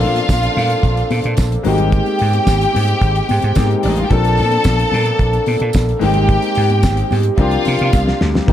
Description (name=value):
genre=disco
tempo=110 BPM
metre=4/4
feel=straight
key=unclear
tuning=A4 = 442 Hz
part: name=clear studio string section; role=second line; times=0.0-8.5 s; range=D4 to A5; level=-20 LUFS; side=equal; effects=slapback echo
part: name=clear concert grand piano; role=accompaniment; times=0.0-8.5 s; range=F3 to A4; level=-21 LUFS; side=left 5 dB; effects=none
part: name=warm French horn section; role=sustained chords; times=0.0-8.5 s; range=C3 to A4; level=-23 LUFS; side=right 3 dB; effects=none
part: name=vintage slap bass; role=bass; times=0.0-8.5 s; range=Ab1 to C3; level=-17 LUFS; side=right 1 dB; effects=none
part: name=damped 70s drum kit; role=drums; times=0.0-8.5 s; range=hi-hat, kick drum, snare drum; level=-19 LUFS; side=equal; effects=none
part: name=congas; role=percussion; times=0.2-8.5 s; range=none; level=-26 LUFS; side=left 4 dB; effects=none
part: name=tambourine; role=percussion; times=0.3-8.1 s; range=none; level=-33 LUFS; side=right 9 dB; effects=none
room=light reverb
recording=dark, warm production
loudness=-13 LUFS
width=side -11 dB against mid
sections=0.0-8.5 A section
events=drum fill 7.9-8.5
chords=0.0 Bbmaj7; 1.7 Abmaj9; 4.1 Bbmaj7; 6.0 Abmaj9; 7.4 C7sus4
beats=0.29 0.84 1.38 | 1.93 2.47 3.02 3.56 | 4.11 4.66 5.20 5.75 | 6.29 6.84 7.39 7.93 | 8.48